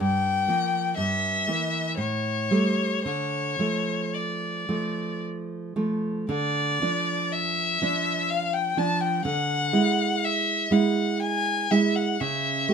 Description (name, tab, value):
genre	romantic duo for violin and classical guitar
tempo	54-64 BPM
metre	3/4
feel	rubato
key	D minor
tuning	A4 = 435 Hz
part	rich violin	melody	0.0-12.7 s	C#5 to A5	-26 LUFS	left 4 dB	none
part	nylon-string guitar	accompaniment	0.0-12.7 s	G2 to G4	-26 LUFS	right 3 dB	none
room	moderate studio reverb, RT60 0.6 s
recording	minimal, uncompressed stereo recording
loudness	-23 LUFS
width	side -6 dB against mid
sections	0.0-6.3 A section; 6.3-12.7 A section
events	none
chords	0.0 Gm7; 1.0 Edim/G; 2.0 A7; 3.1 Dm; 9.2 E7/D; 12.2 A/C# (rootless)